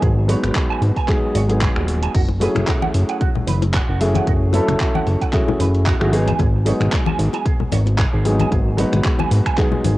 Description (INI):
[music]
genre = nu-disco, nu disco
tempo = 113 BPM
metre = 4/4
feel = swing 55% on 16ths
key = unclear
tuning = A4 = 441 Hz
[part]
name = dark concert grand piano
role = accompaniment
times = 0.0-10.0 s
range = F#3 to B4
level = -22 LUFS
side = equal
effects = sidechain pumping, low-pass filter, cassette tape
[part]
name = electric guitar with an envelope filter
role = riff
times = 0.0-9.9 s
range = F#4 to G#5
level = -28 LUFS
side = right 8 dB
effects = lush chorus, cassette tape, analog delay
[part]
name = fat analog bass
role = bass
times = 0.0-10.0 s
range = D#1 to G#1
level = -18 LUFS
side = equal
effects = none
[part]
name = electronic kick drum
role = drums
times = 0.0-9.7 s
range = none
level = -19 LUFS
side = equal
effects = small room ambience, cassette tape
[part]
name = pop drum kit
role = drums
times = 0.0-10.0 s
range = crash cymbal, finger snaps, handclaps, hi-hat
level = -28 LUFS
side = equal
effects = small room ambience, cassette tape
[part]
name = bongos and congas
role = percussion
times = 2.3-10.0 s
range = none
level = -25 LUFS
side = left 6 dB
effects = none
[sound]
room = light reverb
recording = home recording on cassette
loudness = -15 LUFS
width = side -17 dB against mid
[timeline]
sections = 0.0-10.0 A section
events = none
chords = 0.0 G#m7; 2.1 F#m9; 6.1 G#m7